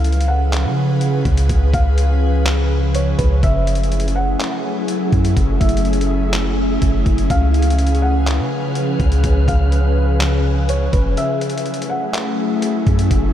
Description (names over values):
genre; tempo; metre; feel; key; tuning
hip hop, atmospheric cloud-rap; 124 BPM; 4/4; half-time; F# minor; A4 = 440 Hz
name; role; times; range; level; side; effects
felt-muted upright piano; melody; 0.0-12.6 s; B4 to F#5; -26 LUFS; equal; low-pass filter, diffuse ambient delay
ethereal airy pad; sustained chords; 0.0-13.3 s; C#3 to B4; -20 LUFS; left 1 dB; ensemble chorus, built-in reverb, sidechain pumping
soft 808-style bass; bass; 0.0-13.3 s; F#1 to C#3; -17 LUFS; equal; none
trip hop sampler-style drum kit; drums; 0.0-13.2 s; handclaps, hi-hat, kick drum; -21 LUFS; equal; none
wind-like tuned noise texture; texture; 4.7-13.3 s; A3 to E#6; -30 LUFS; equal; built-in reverb
room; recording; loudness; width
moderate huge ambient reverb, RT60 8.2 s; dreamy mix soaked in reverb; -14 LUFS; side -11 dB against mid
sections
0.0-13.3 A section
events
break 11.2-12.1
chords
0.0 C#7; 3.4 F#m9; 7.3 C#7; 11.2 F#m9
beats
0.04 0.53 1.01 | 1.50 1.98 2.46 2.95 | 3.43 3.91 4.40 4.88 | 5.37 5.85 6.33 6.82 | 7.30 7.79 8.27 8.75 | 9.24 9.72 10.20 10.69 | 11.17 11.66 12.14 12.62 | 13.11